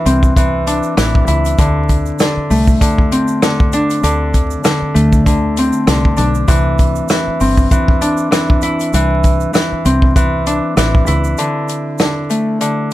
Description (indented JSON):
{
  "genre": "hip hop, boom-bap hip-hop",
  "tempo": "98 BPM",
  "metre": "4/4",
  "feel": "swing 56% on 16ths",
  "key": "unclear",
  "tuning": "A4 = 440 Hz",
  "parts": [
    { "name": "Celtic harp", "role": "accompaniment", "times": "0.0-12.9 s", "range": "D3 to E4", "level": "-15 LUFS", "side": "left 1 dB", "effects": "cassette tape, high-pass filter, low-pass filter" },
    { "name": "deep dub fingered electric bass", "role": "bass", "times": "0.1-11.3 s", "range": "G1 to D2", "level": "-16 LUFS", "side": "equal", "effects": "none" },
    { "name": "warm soul drum kit", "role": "drums", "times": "0.1-12.8 s", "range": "hi-hat, kick drum, rim click, snare drum", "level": "-14 LUFS", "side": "equal", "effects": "none" },
    { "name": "egg shaker", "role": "percussion", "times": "0.1-12.9 s", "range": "none", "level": "-32 LUFS", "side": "right 14 dB", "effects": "none" }
  ],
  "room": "little or no reverb",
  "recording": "vinyl crackle",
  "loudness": "-11 LUFS",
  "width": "side -15 dB against mid",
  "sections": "0.0-11.4 A section; 11.4-12.9 B section",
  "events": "break 11.4-12.9",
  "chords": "0.0 Cadd9; 1.6 D5; 6.5 Cadd9; 11.4 D5"
}